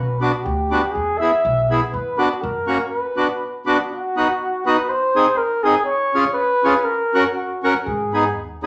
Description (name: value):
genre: alpine folk, alpine dance band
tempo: 121 BPM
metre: 2/4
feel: straight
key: B minor, B major from 3.9 s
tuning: A4 = 439 Hz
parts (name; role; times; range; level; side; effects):
- mellow flugelhorn; melody; 0.0-8.7 s; F#4 to E5; -23 LUFS; equal; none
- upright bass; bass; 0.0-2.7, 7.9-8.7 s; B1 to G#2; -28 LUFS; equal; none
- accordion; accompaniment; 0.2-8.7 s; A#3 to A#4; -22 LUFS; equal; none
room: wet large studio reverb, RT60 0.9 s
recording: none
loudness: -19 LUFS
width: mono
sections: 0.0-3.9 A section; 3.9-8.7 B section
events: none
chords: 0.0 Bm; 0.9 E; 1.9 Bm/F#; 2.4 F#; 2.9 Bm; 3.9 B; 4.9 G#; 5.9 C#7; 6.9 F#; 7.9 G#m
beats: 0.45 | 0.94 1.44 | 1.93 2.42 | 2.91 3.41 | 3.91 4.41 | 4.90 5.39 | 5.88 6.37 | 6.86 7.36 | 7.86 8.37